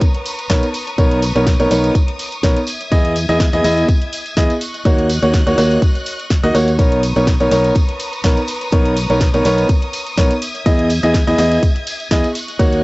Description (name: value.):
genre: piano house.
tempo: 124 BPM.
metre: 4/4.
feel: swing 54% on 16ths.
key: B major.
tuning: A4 = 439 Hz.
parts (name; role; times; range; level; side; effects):
rich studio violin section; sustained chords; 0.0-12.8 s; B4 to G#6; -27 LUFS; left 1 dB; sidechain pumping, cassette tape.
electronic kick drum; drums; 0.0-12.7 s; none; -14 LUFS; equal; small room ambience.
house drum kit; drums; 0.0-12.8 s; hi-hat, ride cymbal, snare drum; -26 LUFS; equal; small room ambience.
tambourine; percussion; 0.0-12.8 s; none; -31 LUFS; right 1 dB; none.
clear baby grand piano; riff; 0.5-12.8 s; A#3 to D#5; -16 LUFS; equal; sidechain pumping, cassette tape, analog delay.
fingered electric bass; bass; 0.5-12.8 s; B1 to E2; -19 LUFS; equal; sidechain pumping.
room: light reverb.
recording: home recording on cassette, nothing above 7.9 kHz.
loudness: -13 LUFS.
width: side -23 dB against mid.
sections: 0.0-12.8 A section.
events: none.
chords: 0.0 Bmaj9; 2.7 Emaj7; 4.6 D#m7; 6.8 Bmaj9; 10.4 Emaj7.